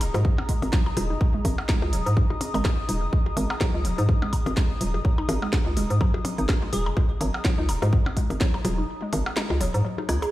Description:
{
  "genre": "minimal techno",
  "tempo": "125 BPM",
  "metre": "4/4",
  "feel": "swing 56% on 16ths",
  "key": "unclear",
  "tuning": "A4 = 440 Hz",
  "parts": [
    { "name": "hollow knocking FM bass", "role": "bass", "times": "0.0-10.2 s", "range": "D#1 to G#2", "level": "-25 LUFS", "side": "equal", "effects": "sidechain pumping" },
    { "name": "house drum kit", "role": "drums", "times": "0.0-10.3 s", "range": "hi-hat, rim click, snare drum", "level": "-32 LUFS", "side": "equal", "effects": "none" },
    { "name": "percussion blips", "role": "percussion", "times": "0.0-10.3 s", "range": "none", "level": "-33 LUFS", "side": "left 3 dB", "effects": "digital delay" },
    { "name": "airy breathy pad", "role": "texture", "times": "0.0-10.3 s", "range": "G#4 to D#6", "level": "-35 LUFS", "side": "left 1 dB", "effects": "chorus, sidechain pumping" },
    { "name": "hollow square pluck", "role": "riff", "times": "0.1-10.3 s", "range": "F#3 to G#4", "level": "-32 LUFS", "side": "equal", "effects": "chorus, cassette tape, sidechain pumping, tape echo" },
    { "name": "electronic kick drum", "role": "drums", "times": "0.2-8.5 s", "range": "none", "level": "-23 LUFS", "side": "equal", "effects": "none" },
    { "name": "glassy wavetable pluck", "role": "melody", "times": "6.7-7.4 s", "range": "G#4", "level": "-35 LUFS", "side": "left 2 dB", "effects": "chorus, cassette tape, digital delay" }
  ],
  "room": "light reverb",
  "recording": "played on a big sound system in a bare room, large studio reverb",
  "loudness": "-22 LUFS",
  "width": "side -16 dB against mid",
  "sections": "0.0-10.3 A section",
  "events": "break 8.9-10.3; drum fill 10.1",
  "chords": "0.0 G#5",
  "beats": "0.25 0.73 | 1.21 1.69 2.17 2.65 | 3.13 3.61 4.09 4.57 | 5.05 5.53 6.01 6.49 | 6.97 7.45 7.93 8.41 | 8.89 9.37 9.85"
}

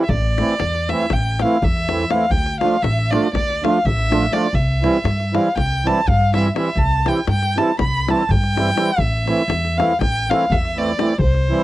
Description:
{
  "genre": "balkan folk, Balkan wedding band",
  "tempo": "243 BPM (eighths)",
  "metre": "9/8",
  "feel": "straight",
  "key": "unclear",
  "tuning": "A4 = 444 Hz",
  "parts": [
    { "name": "warm violin", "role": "melody", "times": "0.0-11.6 s", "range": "C5 to B5", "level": "-21 LUFS", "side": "equal", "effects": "none" },
    { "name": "accordion", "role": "accompaniment", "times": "0.0-11.6 s", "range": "E3 to F4", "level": "-19 LUFS", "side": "right 3 dB", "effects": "light tremolo tuning" },
    { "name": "upright bass", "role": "bass", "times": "0.1-11.5 s", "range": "A1 to G2", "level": "-21 LUFS", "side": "equal", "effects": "none" },
    { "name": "davul", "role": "percussion", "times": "0.1-11.6 s", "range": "none", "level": "-23 LUFS", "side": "left 2 dB", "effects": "none" }
  ],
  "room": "light reverb",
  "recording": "dry, close 1970s-style studio recording, vinyl crackle",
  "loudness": "-16 LUFS",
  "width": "side -15 dB against mid",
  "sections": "0.0-11.6 A section",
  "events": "none",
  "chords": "0.1 Am; 2.3 Dm; 4.5 C; 9.0 Am",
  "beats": "| 0.10 0.34 0.59 0.84 1.08 1.33 1.58 1.82 2.07 | 2.32 2.57 2.81 3.06 3.31 3.55 3.80 4.05 4.29 | 4.54 4.79 5.03 5.28 5.53 5.77 6.02 6.27 6.51 | 6.76 7.01 7.25 7.50 7.75 7.99 8.24 8.49 8.73 | 8.98 9.23 9.47 9.72 9.97 10.21 10.46 10.71 10.96 | 11.20 11.45"
}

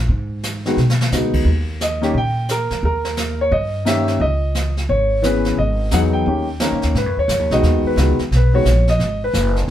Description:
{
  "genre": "jazz piano trio",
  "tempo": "175 BPM",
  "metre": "4/4",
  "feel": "swing 63% on 8ths",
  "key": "G# harmonic minor",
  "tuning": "A4 = 440 Hz",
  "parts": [
    { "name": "upright bass", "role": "bass", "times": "0.0-9.7 s", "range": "F#1 to B2", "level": "-18 LUFS", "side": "equal", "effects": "none" },
    { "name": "jazz brush drum kit", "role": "drums", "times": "0.1-9.7 s", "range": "brushed snare drum, crash cymbal, hi-hat, kick drum, snare drum", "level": "-26 LUFS", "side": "right 1 dB", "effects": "none" },
    { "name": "warm grand piano", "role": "melody", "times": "0.7-9.6 s", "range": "D#3 to G5", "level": "-19 LUFS", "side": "left 1 dB", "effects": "none" }
  ],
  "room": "moderate studio reverb, RT60 0.6 s",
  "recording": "band playing live in one room",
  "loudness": "-15 LUFS",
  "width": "side -11 dB against mid",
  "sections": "0.0-6.9 A section; 6.9-9.7 B section",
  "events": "drum fill 0.8-1.1; grand piano solo 6.9-9.7",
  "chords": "0.0 G#m7; 1.5 D#7; 4.2 C#m7; 5.6 G#m7; 6.3 D#7; 6.9 G#m7",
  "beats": "| 0.10 0.44 0.78 1.12 | 1.47 1.81 2.15 2.49 | 2.83 3.18 3.52 3.86 | 4.20 4.54 4.89 5.23 | 5.57 5.92 6.26 6.60 | 6.94 7.29 7.63 7.97 | 8.32 8.66 9.00 9.35 | 9.69"
}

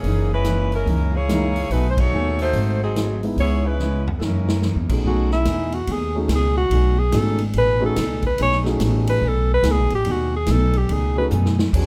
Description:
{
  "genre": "jazz, big band swing",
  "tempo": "144 BPM",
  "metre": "4/4",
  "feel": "swing 64% on 8ths",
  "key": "B mixolydian",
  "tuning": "A4 = 440 Hz",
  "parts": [
    { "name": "warm saxophone section", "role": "melody", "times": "0.0-4.6 s", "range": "E3 to C#5", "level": "-27 LUFS", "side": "equal", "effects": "none" },
    { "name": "picked steel-string acoustic guitar", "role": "accompaniment", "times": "0.0-11.9 s", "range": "F#2 to C#5", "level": "-29 LUFS", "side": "equal", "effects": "none" },
    { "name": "upright bass", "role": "bass", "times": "0.0-11.9 s", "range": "F#1 to F#2", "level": "-23 LUFS", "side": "equal", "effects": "none" },
    { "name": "swinging big-band drum kit", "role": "drums", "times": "0.0-11.9 s", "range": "crash cymbal, hi-hat, kick drum, ride cymbal, snare drum, toms", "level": "-30 LUFS", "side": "equal", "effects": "none" },
    { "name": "warm grand piano", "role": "accompaniment", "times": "1.3-11.9 s", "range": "B2 to G#4", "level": "-29 LUFS", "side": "equal", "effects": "none" },
    { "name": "warm alto saxophone", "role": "melody", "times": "5.1-11.3 s", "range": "E4 to C#5", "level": "-24 LUFS", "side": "equal", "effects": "none" }
  ],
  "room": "light reverb",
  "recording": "none",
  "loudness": "-20 LUFS",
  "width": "mono",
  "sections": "0.0-5.0 A section; 5.0-11.9 B section",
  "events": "band accent 1.9; drum fill 3.8-4.6, 11.3-11.7; alto saxophone solo 5.0-11.9",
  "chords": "0.0 F#13; 1.7 B13; 2.5 G#7b9; 3.4 C#m7; 4.2 F#13; 5.0 B13",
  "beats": "| 0.03 0.45 0.87 1.29 | 1.70 2.12 2.54 2.96 | 3.38 3.79 4.21 4.63 | 5.05 5.46 5.88 6.30 | 6.72 7.13 7.55 7.97 | 8.39 8.81 9.22 9.64 | 10.06 10.48 10.90 11.31 | 11.73"
}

